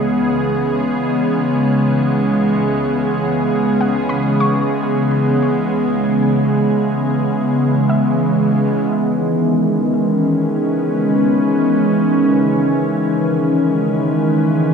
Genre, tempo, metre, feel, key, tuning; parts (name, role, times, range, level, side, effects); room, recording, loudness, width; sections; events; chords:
ambient; free time; C# minor; A4 = 441 Hz
evolving wavetable pad; sustained chords; 0.0-14.7 s; C#3 to B4; -14 LUFS; equal; chorus, built-in reverb
soft round pluck; arpeggios; 0.0-9.4 s; D#5 to C#6; -27 LUFS; left 1 dB; analog chorus, ping-pong delay
dark chamber cello section; bass; 0.0-8.9 s; C#2; -34 LUFS; left 1 dB
organ-like drone; drone; 0.0-14.7 s; C#3 to C#4; -24 LUFS; left 2 dB; ensemble chorus, built-in reverb
wet concert hall reverb, RT60 2.0 s; dark, warm production; -14 LUFS; side -6 dB against mid
0.0-8.9 A section; 8.9-14.7 B section
fade-in on synth pluck 0.0-8.9; fade-in on synth drone 0.0-8.9, 8.9-14.7; filter sweep on ambient pad 8.9-14.7
0.0 C#m7; 8.9 C#m9